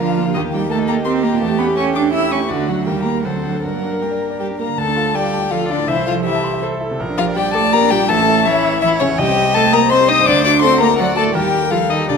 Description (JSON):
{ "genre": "quick classical-period movement for piano quintet", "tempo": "165 BPM", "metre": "3/4", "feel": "rubato", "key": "G minor, D minor from 4.8 s", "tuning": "A4 = 440 Hz", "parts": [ { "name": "warm violin", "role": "melody", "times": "0.0-12.2 s", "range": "C#5 to E6", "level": "-19 LUFS", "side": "left 8 dB", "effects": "none" }, { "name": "dark violin", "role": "second line", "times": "0.0-12.2 s", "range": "C#4 to Eb5", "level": "-21 LUFS", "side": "left 5 dB", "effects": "none" }, { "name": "warm cello", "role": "second line", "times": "0.0-12.2 s", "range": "C#3 to E4", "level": "-20 LUFS", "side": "right 8 dB", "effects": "none" }, { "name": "bright concert grand piano", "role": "accompaniment", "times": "0.0-12.2 s", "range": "A1 to E6", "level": "-21 LUFS", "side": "equal", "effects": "none" }, { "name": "rich viola", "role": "accompaniment", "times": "0.0-12.2 s", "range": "D4 to E5", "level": "-23 LUFS", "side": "right 4 dB", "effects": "none" } ], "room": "moderate scoring stage reverb, RT60 1.8 s", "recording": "close, detailed microphones", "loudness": "-14 LUFS", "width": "side -6 dB against mid", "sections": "0.0-4.8 A section; 4.8-12.2 B section", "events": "none", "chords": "0.4 Eb; 1.4 A7/E; 2.5 D; 2.9 Eb; 3.2 D7; 3.6 Gm; 4.8 Dm; 5.9 Am/C; 7.0 Gm/Bb; 8.1 A; 9.2 Cm; 10.3 D; 11.3 Eb" }